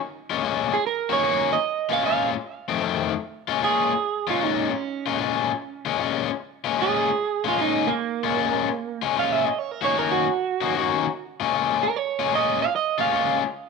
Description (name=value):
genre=blues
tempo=151 BPM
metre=4/4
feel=swing 66% on 8ths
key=Bb minor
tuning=A4 = 440 Hz
part: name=overdriven semi-hollow guitar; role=riff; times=0.3-13.4 s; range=F2 to Gb4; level=-24 LUFS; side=left 11 dB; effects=none
part: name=electric guitar through a small old amp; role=melody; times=0.7-13.4 s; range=Bb3 to F5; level=-24 LUFS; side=right 10 dB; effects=warbly pitch drift
room=moderate echo chamber reverb, RT60 1.3 s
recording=1960s-style stereo with parts hard left and right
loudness=-21 LUFS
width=side -4 dB against mid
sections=0.0-3.2 A section; 3.2-13.7 A section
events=clean electric guitar solo 0.0-3.2, 3.2-13.7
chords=0.1 Bbm7; 0.8 Ebm7; 1.6 Bbm7; 2.4 F7; 3.2 Bbm7; 9.6 Ebm7; 11.1 Bbm7